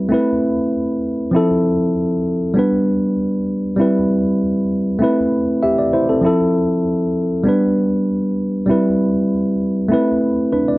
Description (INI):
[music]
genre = afrobeats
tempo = 98 BPM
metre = 4/4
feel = straight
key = A minor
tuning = A4 = 440 Hz
[part]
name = tine electric piano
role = solo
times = 0.0-10.8 s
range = F3 to E5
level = -15 LUFS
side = equal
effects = none
[sound]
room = moderate studio reverb, RT60 0.6 s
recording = worn, warbling old tape, cassette tape, warbly pitch drift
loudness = -15 LUFS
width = side -20 dB against mid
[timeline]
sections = 0.0-10.8 A section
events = none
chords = 0.1 Amadd9; 1.3 Fmaj7; 2.6 G; 3.8 Cmaj7; 5.0 Amadd9; 6.2 Fmaj7; 7.5 G; 8.7 Cmaj7; 9.9 Amadd9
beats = | 0.11 0.73 1.34 1.95 | 2.56 3.17 3.79 4.40 | 5.01 5.62 6.24 6.85 | 7.46 8.07 8.69 9.30 | 9.91 10.52